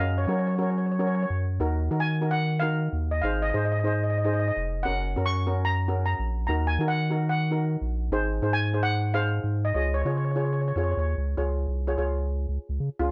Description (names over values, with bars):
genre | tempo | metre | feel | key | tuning
calypso | 147 BPM | 4/4 | straight | Db major | A4 = 440 Hz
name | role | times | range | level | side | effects
steel pan | melody | 0.0-13.1 s | F4 to Db6 | -32 LUFS | equal | none
steel pan | accompaniment | 0.0-13.1 s | Db4 to Db5 | -33 LUFS | equal | none
saturated sub bass | bass | 0.0-13.1 s | F1 to Gb3 | -28 LUFS | equal | none
room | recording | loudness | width
little or no reverb | cassette tape | -26 LUFS | mono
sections
0.0-11.4 A section; 11.4-13.0 B section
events
none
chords
0.0 Gb; 1.6 Ebmadd9; 3.2 Ab; 4.9 Gb; 6.5 Ebm; 8.1 Ab; 9.7 Db